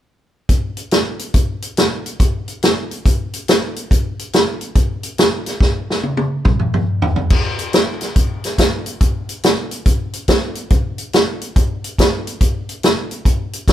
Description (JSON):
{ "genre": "blues", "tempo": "141 BPM", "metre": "4/4", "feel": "swing 65% on 8ths", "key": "none", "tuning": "none", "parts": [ { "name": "vintage drum kit", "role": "drums", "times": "0.5-13.7 s", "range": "crash cymbal, hi-hat, kick drum, snare drum, toms", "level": "-15 LUFS", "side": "equal", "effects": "none" } ], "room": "light reverb", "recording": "band playing live in one room", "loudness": "-15 LUFS", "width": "side -12 dB against mid", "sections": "0.5-7.3 A section; 7.3-13.7 B section", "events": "drum fill 5.6-7.3", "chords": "none" }